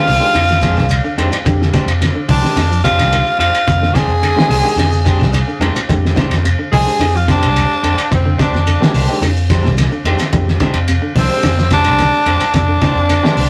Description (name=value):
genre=afrobeat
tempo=108 BPM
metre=4/4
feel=straight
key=F dorian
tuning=A4 = 440 Hz
part: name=growling tenor saxophone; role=melody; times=0.0-13.5 s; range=C4 to Ab4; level=-18 LUFS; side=equal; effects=none
part: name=overdriven reed electric piano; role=accompaniment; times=0.0-13.4 s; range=Ab3 to Ab5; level=-26 LUFS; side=equal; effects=tremolo
part: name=electric guitar at the edge of break-up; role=arpeggios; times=0.0-13.4 s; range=C3 to F3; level=-26 LUFS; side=equal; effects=none
part: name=electric guitar at the edge of break-up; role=stabs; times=0.0-13.5 s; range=Ab3 to C5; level=-27 LUFS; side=equal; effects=none
part: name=fingered electric bass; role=bass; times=0.1-13.5 s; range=C2 to F2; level=-19 LUFS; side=equal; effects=none
part: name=cloth-damped thuddy drum kit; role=drums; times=0.1-13.5 s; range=hi-hat, kick drum, ride cymbal, snare drum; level=-20 LUFS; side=equal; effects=none
part: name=claves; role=percussion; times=0.1-13.5 s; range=none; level=-37 LUFS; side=equal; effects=none
part: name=congas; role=percussion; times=0.1-13.5 s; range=none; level=-26 LUFS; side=equal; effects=none
part: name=shekere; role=percussion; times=0.1-13.5 s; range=none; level=-29 LUFS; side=equal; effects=none
part: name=raspy tenor saxophone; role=second line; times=6.7-13.5 s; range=C4 to Ab4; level=-26 LUFS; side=equal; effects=none
room=moderate small room reverb, RT60 0.5 s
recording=rough rehearsal-room recording, warm saturation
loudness=-14 LUFS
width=mono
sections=0.0-13.5 A section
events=reed electric piano fill 0.3-1.5; drum fill 5.2-5.9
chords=0.0 Fm69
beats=0.34 0.90 | 1.45 2.01 2.56 3.12 | 3.67 4.23 4.78 5.34 | 5.89 6.45 7.00 7.56 | 8.11 8.67 9.22 9.78 | 10.33 10.88 11.44 11.99 | 12.55 13.10